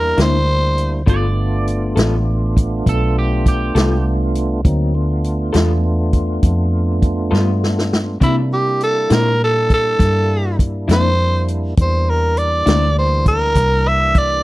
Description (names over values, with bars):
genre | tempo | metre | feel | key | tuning
slow blues | 67 BPM (dotted quarters) | 12/8 | straight | unclear | A4 = 440 Hz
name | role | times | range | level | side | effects
growling tenor saxophone | melody | 0.0-1.1, 8.2-14.4 s | E4 to E5 | -17 LUFS | equal | slapback echo
tonewheel organ | sustained chords | 0.0-14.4 s | E3 to F4 | -24 LUFS | right 1 dB | overdrive, chorus vibrato, slow rotary speaker
vintage muted fingered electric bass | bass | 0.0-14.4 s | G1 to C3 | -17 LUFS | equal | none
electric guitar through a small old amp | accompaniment | 0.2-12.8 s | C3 to A4 | -21 LUFS | left 4 dB | harmonic tremolo
vintage drum kit | drums | 0.2-14.3 s | hi-hat, kick drum, snare drum | -16 LUFS | equal | none
electric guitar at the edge of break-up | second line | 1.1-4.0 s | G4 to D5 | -26 LUFS | right 4 dB | none
room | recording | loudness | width
studio ambience | dry, close 1970s-style studio recording | -14 LUFS | side -18 dB against mid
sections
0.0-14.4 A section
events
drum fill 7.3-8.2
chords
0.0 C9; 1.1 G9; 8.2 C9